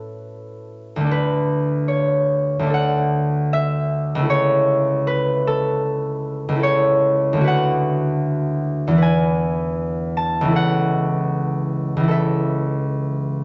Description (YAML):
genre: classical, solo harp piece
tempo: 77 BPM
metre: 4/4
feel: uneven beats, rubato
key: A major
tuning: A4 = 441 Hz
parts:
  - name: concert harp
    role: solo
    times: 0.0-13.4 s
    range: C#2 to A5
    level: -20 LUFS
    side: equal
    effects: none
room: moderate stone room reverb, RT60 1.1 s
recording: nothing above 7.7 kHz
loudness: -20 LUFS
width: mono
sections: 0.0-13.4 A section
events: none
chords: 0.0 F#m/A; 1.1 D; 7.5 Bm7/D; 9.0 E; 10.5 A/C#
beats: 0.33 | 1.13 1.89 2.73 3.53 | 4.30 5.08 5.85 6.61 | 7.46 8.24 9.00 9.78 | 10.54 11.30 12.09 12.89